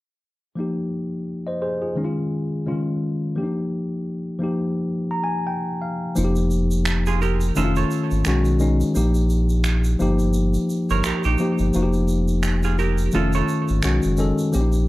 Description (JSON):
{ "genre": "R&B, neo-soul", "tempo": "86 BPM", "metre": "4/4", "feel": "swing 57% on 16ths", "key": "F minor", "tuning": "A4 = 436 Hz", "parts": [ { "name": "mellow tine electric piano", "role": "accompaniment", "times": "0.6-14.9 s", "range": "Db3 to Bb5", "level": "-22 LUFS", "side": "left 1 dB", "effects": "none" }, { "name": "round analog bass", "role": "bass", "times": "6.2-14.9 s", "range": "F1 to B1", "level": "-20 LUFS", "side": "equal", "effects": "none" }, { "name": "egg shaker and finger snaps", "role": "percussion", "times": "6.2-14.9 s", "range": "none", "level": "-31 LUFS", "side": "right 3 dB", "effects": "none" }, { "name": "vintage hollow-body jazz guitar", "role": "second line", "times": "7.1-13.8 s", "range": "Eb4 to C#5", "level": "-26 LUFS", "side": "right 8 dB", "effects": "tape echo" } ], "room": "moderate studio reverb, RT60 0.6 s", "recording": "dark, warm production", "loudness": "-19 LUFS", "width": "side -17 dB against mid", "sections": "0.6-6.2 A section; 6.2-14.9 B section", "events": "tine electric piano fill 4.8-6.2", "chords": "0.6 F9sus4; 2.0 Eb9sus4; 3.4 F9sus4; 7.5 F7alt; 8.2 Badd9; 8.9 Bbsus4; 10.0 Ebadd9/G; 11.7 F9sus4; 13.1 F7alt; 13.8 B9", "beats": "| 0.57 1.27 1.97 2.66 | 3.36 4.06 4.76 5.45 | 6.15 6.85 7.55 8.24 | 8.94 9.64 10.34 11.04 | 11.73 12.43 13.13 13.82 | 14.52" }